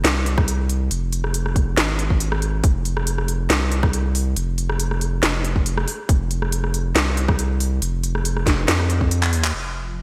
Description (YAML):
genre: deep dubstep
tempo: 139 BPM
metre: 4/4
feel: swing 53% on 16ths, half-time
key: F minor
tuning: A4 = 439 Hz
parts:
  - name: saturated sub bass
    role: bass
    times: 0.0-10.0 s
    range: F1 to F2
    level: -24 LUFS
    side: equal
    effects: tube saturation
  - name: garage drum kit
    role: drums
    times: 0.0-9.5 s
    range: handclaps, hi-hat, rim click, snare drum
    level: -25 LUFS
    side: equal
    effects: low-pass filter on snare, low-pass filter on hats, low-pass filter on room
  - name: electronic kick drum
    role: drums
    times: 0.4-9.1 s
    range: none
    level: -22 LUFS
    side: equal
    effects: none
room: light reverb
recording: bright 1980s-style digital production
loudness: -21 LUFS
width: mono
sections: 0.0-9.5 A section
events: drum fill 9.2-9.5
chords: none